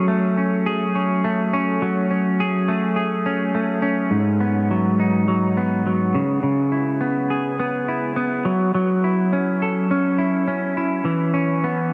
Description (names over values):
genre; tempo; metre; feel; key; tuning
indie pop; 104 BPM; 4/4; swing 55% on 16ths; F# dorian; A4 = 441 Hz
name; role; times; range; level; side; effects
semi-hollow electric guitar; solo; 0.0-11.9 s; G#2 to A4; -21 LUFS; equal; subtle chorus, warbly pitch drift, delay
room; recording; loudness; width
wet huge ambient reverb, RT60 8.1 s; dreamy mix soaked in reverb, cassette tape; -21 LUFS; mono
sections
0.0-1.8 A section; 1.8-4.1 B section; 4.1-11.9 C section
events
none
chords
0.0 F#madd9; 4.1 G#m7; 6.2 C#m7; 8.5 F#m7; 11.1 E5